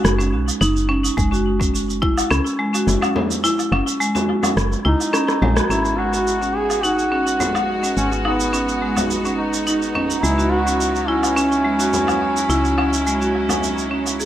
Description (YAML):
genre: organic downtempo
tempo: 106 BPM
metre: 4/4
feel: straight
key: unclear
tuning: A4 = 440 Hz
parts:
  - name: woody FM bass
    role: bass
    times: 0.0-14.3 s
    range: F#1 to C#2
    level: -23 LUFS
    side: equal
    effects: sidechain pumping
  - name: electronic rim click, shaker and woodblock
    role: drums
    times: 0.0-14.3 s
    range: none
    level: -25 LUFS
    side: equal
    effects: tape echo
  - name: marimba with hard mallets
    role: arpeggios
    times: 0.2-14.3 s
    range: G#3 to G#4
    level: -21 LUFS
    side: equal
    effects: low-pass filter, analog delay
  - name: electronic kick drum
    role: drums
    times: 1.2-2.1 s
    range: none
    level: -22 LUFS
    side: equal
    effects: none
  - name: frame drum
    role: percussion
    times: 2.9-13.6 s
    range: none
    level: -29 LUFS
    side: left 2 dB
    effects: tape echo
  - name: clear duduk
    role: melody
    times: 4.9-14.2 s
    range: B3 to G#4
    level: -21 LUFS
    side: equal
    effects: analog delay
  - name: clear studio string section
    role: sustained chords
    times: 5.7-14.3 s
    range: F#3 to F#4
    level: -26 LUFS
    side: equal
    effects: sidechain pumping
room: moderate spring reverb, RT60 2.4 s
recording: echo-heavy mix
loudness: -16 LUFS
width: side -12 dB against mid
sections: 0.0-5.7 A section; 5.7-14.3 B section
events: kick drops out 3.4-5.7; drum fill 5.1-5.7; band accent 5.6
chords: 0.0 B; 1.2 F#7(no3); 5.7 G#m7; 10.2 C#m11